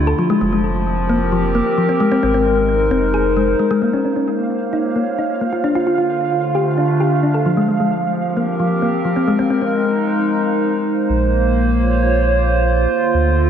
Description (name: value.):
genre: IDM.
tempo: 132 BPM.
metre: 4/4.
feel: straight.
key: unclear.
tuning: A4 = 440 Hz.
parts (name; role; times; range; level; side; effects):
warbly tape-like pad; sustained chords; 0.0-13.5 s; D3 to Db5; -17 LUFS; equal; chorus, built-in reverb.
thumb-piano-like synth pluck; arpeggios; 0.0-9.7 s; F3 to A4; -19 LUFS; left 2 dB; chorus, tape echo.
warm sub bass; bass; 0.0-3.5, 11.1-13.5 s; F1 to D2; -19 LUFS; right 1 dB; none.
pulsing gated texture; texture; 4.4-10.2 s; F5; -25 LUFS; right 8 dB; chorus, built-in reverb.
room: wet plate reverb, RT60 2.6 s.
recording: dreamy mix soaked in reverb.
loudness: -14 LUFS.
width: side -8 dB against mid.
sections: 0.0-3.8 A section; 3.8-11.1 B section; 11.1-13.5 C section.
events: filter sweep on synth arpeggio sound 3.8-11.1.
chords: 0.2 Fsus4; 2.0 Ab6; 3.8 Bbmadd9; 5.6 Dm7; 7.5 Fsus4; 9.3 Ab6; 11.1 Bbmadd9; 12.9 Dm7.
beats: | 0.18 0.64 1.09 1.55 | 2.00 2.46 2.91 3.37 | 3.82 4.28 4.73 5.18 | 5.64 6.09 6.55 7.00 | 7.46 7.91 8.37 8.82 | 9.28 9.73 10.19 10.64 | 11.10 11.55 12.00 12.46 | 12.91 13.37.